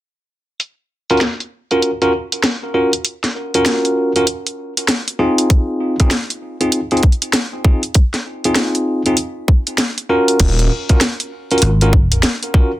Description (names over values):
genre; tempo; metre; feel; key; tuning
glitch hop; 98 BPM; 4/4; swing 63% on 16ths; Eb dorian; A4 = 440 Hz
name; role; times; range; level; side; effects
drum and bass drum kit; drums; 0.6-12.5 s; crash cymbal, hi-hat, snare drum; -17 LUFS; equal; low-pass filter on hats, low-pass filter on snare, low-pass filter on cymbals
bell-like tine electric piano; stabs; 1.1-12.7 s; C4 to Bb4; -17 LUFS; equal; sidechain pumping, low-pass filter, tape echo
electronic kick drum; drums; 5.5-12.7 s; none; -11 LUFS; equal; none
phased detuned saw bass; bass; 10.4-10.7 s; Eb1; -15 LUFS; equal; phaser
dry thumbed slap bass; bass; 11.6-12.2 s; Ab1; -13 LUFS; equal; tube saturation
room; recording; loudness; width
moderate studio ambience, RT60 0.5 s; dense, heavily limited modern master; -14 LUFS; side -15 dB against mid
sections
0.6-10.4 A section; 10.4-12.8 B section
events
kick drops out 9.8-10.4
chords
0.6 Ebm7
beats
| 0.60 1.21 1.83 2.44 | 3.05 3.66 4.28 4.89 | 5.50 6.11 6.72 7.34 | 7.95 8.56 9.17 9.79 | 10.40 11.01 11.62 12.23